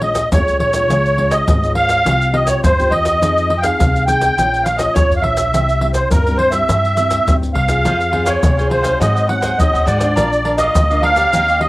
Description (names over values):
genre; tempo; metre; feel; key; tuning
samba and choro; 104 BPM; 4/4; straight; unclear; A4 = 440 Hz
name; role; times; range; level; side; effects
musette accordion; melody; 0.0-11.7 s; Bb4 to G5; -15 LUFS; right 1 dB; cassette tape
nylon-string guitar; accompaniment; 0.0-11.7 s; F2 to Ab4; -24 LUFS; left 2 dB; cassette tape
upright bass; bass; 0.0-11.7 s; Ab1 to Ab2; -20 LUFS; equal; none
pandeiro, maracas and surdo; percussion; 0.0-11.7 s; none; -18 LUFS; equal; none
cavaquinho; accompaniment; 7.8-11.6 s; D4 to Gb5; -24 LUFS; right 1 dB; cassette tape
room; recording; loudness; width
moderate small room reverb, RT60 0.5 s; home recording on cassette; -12 LUFS; side -19 dB against mid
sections
0.0-11.7 A section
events
none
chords
0.0 Bbm7; 0.9 Db; 2.1 Csus4; 3.2 Fm7; 4.4 Bbm; 5.5 C; 7.9 Fm; 9.0 Ab7; 10.2 Bb